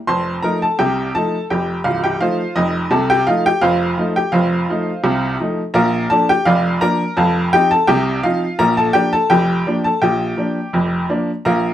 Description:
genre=ragtime piano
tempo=84 BPM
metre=2/4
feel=straight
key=Bb major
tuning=A4 = 440 Hz
part: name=bright upright piano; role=solo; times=0.1-11.7 s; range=C1 to C6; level=-14 LUFS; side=equal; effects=none
room=light reverb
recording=minimal, uncompressed stereo recording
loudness=-14 LUFS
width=side -11 dB against mid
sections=0.0-11.7 A section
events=none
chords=0.1 F7; 2.9 F7/C; 4.3 F7; 5.8 Bb; 7.2 F7; 8.6 Bb

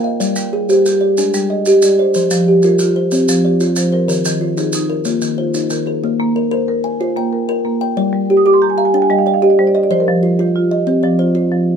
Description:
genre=southern african traditional, mbira-style interlocking cycle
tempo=124 BPM (dotted quarters)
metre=12/8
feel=straight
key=Bb mixolydian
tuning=A4 = 440 Hz
part: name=kalimba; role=arpeggios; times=0.0-11.7 s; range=Eb3 to Ab5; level=-14 LUFS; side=equal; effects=none
part: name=marimba with medium mallets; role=arpeggios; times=0.0-11.8 s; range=Eb3 to Eb6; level=-17 LUFS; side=right 2 dB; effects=none
part: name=maracas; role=percussion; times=0.2-5.9 s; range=none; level=-24 LUFS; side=right 4 dB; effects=none
room=light reverb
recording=minimal, uncompressed stereo recording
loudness=-12 LUFS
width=side -7 dB against mid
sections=0.0-6.0 A section; 6.0-11.8 B section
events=marimba fill 8.2-9.9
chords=0.2 G5; 2.1 F5; 4.1 Eb5; 6.0 Bb5; 8.0 G5; 9.9 F5

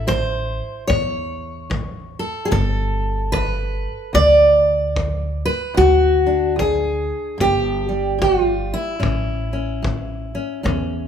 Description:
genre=acoustic country blues, solo or duo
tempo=74 BPM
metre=4/4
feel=swing 62% on 8ths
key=unclear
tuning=A4 = 440 Hz
part: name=fingerpicked steel-string acoustic guitar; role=melody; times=0.0-11.1 s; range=D2 to D5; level=-18 LUFS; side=equal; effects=none
part: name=upright bass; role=bass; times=0.0-11.1 s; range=G1 to E2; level=-23 LUFS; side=equal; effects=none
part: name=kick drum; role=drums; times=0.1-10.9 s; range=none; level=-27 LUFS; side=left 1 dB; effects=none
room=light reverb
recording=band playing live in one room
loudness=-17 LUFS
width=side -8 dB against mid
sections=0.0-11.1 A section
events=none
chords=0.0 A; 2.5 G; 5.8 D; 7.4 N.C.; 9.0 A

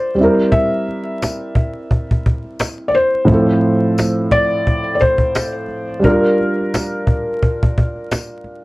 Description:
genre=lo-fi hip hop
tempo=87 BPM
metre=4/4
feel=swing 56% on 16ths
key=unclear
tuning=A4 = 440 Hz
part: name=felt-muted upright piano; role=melody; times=0.0-8.1 s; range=Bb4 to E5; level=-19 LUFS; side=left 1 dB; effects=tape echo
part: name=dark upright piano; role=accompaniment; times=0.0-8.6 s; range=A2 to Bb4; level=-18 LUFS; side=right 1 dB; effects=cassette tape
part: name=cajon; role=drums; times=0.2-8.5 s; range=none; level=-17 LUFS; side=equal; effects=none
part: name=tambourine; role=percussion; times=1.2-8.3 s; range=none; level=-30 LUFS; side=left 4 dB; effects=none
room=moderate small room reverb, RT60 0.5 s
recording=vinyl crackle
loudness=-14 LUFS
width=side -20 dB against mid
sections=0.0-8.6 A section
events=none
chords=0.2 C7/G; 3.3 Fmaj7/A; 6.0 Gm7

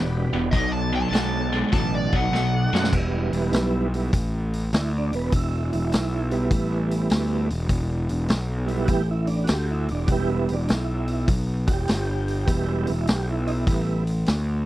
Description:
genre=blues rock power trio and southern rock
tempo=100 BPM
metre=4/4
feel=swing 67% on 8ths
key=E minor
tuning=A4 = 440 Hz
part: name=tonewheel organ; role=sustained chords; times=0.0-14.0 s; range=G3 to D5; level=-28 LUFS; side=right 4 dB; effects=slow rotary speaker, chorus vibrato
part: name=tight distorted guitar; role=riff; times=0.0-2.9 s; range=E2 to G#3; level=-25 LUFS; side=equal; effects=distortion
part: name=fuzz picked electric bass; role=bass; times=0.0-14.6 s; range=E1 to F#2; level=-24 LUFS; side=equal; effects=overdrive
part: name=smooth overdriven lead guitar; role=melody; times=0.5-2.9 s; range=D5 to A5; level=-28 LUFS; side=equal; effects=wah
part: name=vintage drum kit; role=drums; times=0.5-14.5 s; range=crash cymbal, hi-hat, kick drum, snare drum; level=-24 LUFS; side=equal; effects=none
room=little or no reverb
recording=dry, close 1970s-style studio recording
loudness=-21 LUFS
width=side -15 dB against mid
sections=0.0-2.9 A section; 2.9-14.7 B section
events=drum fill 2.3-2.9; tonewheel organ solo 2.9-14.7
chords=0.0 Em7; 0.5 B7#9; 2.9 Em

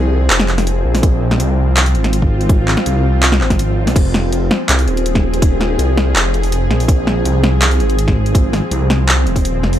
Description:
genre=half-time drum and bass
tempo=164 BPM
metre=4/4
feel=half-time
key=F minor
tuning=A4 = 439 Hz
part: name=bowed-like drone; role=sustained chords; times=0.0-9.8 s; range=F3 to Ab4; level=-20 LUFS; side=equal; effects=built-in reverb, vintage 12-bit sampler grit, sidechain pumping
part: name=phased detuned saw bass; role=bass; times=0.0-9.8 s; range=Eb1 to C2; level=-15 LUFS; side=equal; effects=phaser
part: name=drum and bass drum kit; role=drums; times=0.3-9.8 s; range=crash cymbal, handclaps, hi-hat, snare drum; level=-17 LUFS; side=equal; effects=overdrive, studio reverb
part: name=electronic kick drum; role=drums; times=1.0-9.4 s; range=none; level=-13 LUFS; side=equal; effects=studio reverb
room=digital ambience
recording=dry, gritty hardware recording, transformer saturation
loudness=-12 LUFS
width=side -11 dB against mid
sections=0.0-4.0 A section; 4.0-9.8 A section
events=drop 0.0-4.0, 4.0-9.8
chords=0.0 Fm

